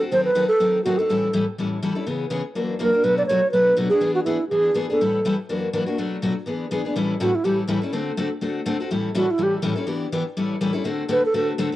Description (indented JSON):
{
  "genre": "jazz",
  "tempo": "246 BPM",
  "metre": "4/4",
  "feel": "swing 56% on 8ths",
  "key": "A mixolydian",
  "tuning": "A4 = 440 Hz",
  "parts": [
    { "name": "picked steel-string acoustic guitar", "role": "accompaniment", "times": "0.0-11.8 s", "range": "F#2 to A4", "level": "-23 LUFS", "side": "left 2 dB", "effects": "cassette tape" },
    { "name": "breathy bright wooden-headed alto flute", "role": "melody", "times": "0.1-11.5 s", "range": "E4 to D5", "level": "-19 LUFS", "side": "right 1 dB", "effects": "cassette tape" }
  ],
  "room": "moderate spring reverb, RT60 1.6 s, studio ambience",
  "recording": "home recording on cassette",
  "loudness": "-20 LUFS",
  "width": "side -15 dB against mid",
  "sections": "0.0-6.9 A section; 6.9-11.8 B section",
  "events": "alto flute solo 6.9-11.8",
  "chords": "0.1 D#dim7; 1.1 A7; 2.1 C#m7; 2.6 F#aug7; 3.0 Bm7; 4.0 E7; 5.0 A7; 5.5 F#aug7; 6.0 Bm7; 6.5 E7; 6.9 A7; 7.9 D7; 8.9 A7; 9.9 Em7; 10.4 A7; 10.8 D7",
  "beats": "| 0.11 0.35 0.60 0.84 | 1.09 1.33 1.57 1.82 | 2.06 2.31 2.55 2.80 | 3.04 3.29 3.53 3.77 | 4.02 4.26 4.51 4.75 | 5.00 5.24 5.48 5.73 | 5.97 6.22 6.46 6.71 | 6.95 7.19 7.44 7.68 | 7.92 8.17 8.41 8.66 | 8.90 9.14 9.39 9.63 | 9.87 10.12 10.36 10.60 | 10.85 11.09 11.33 11.58"
}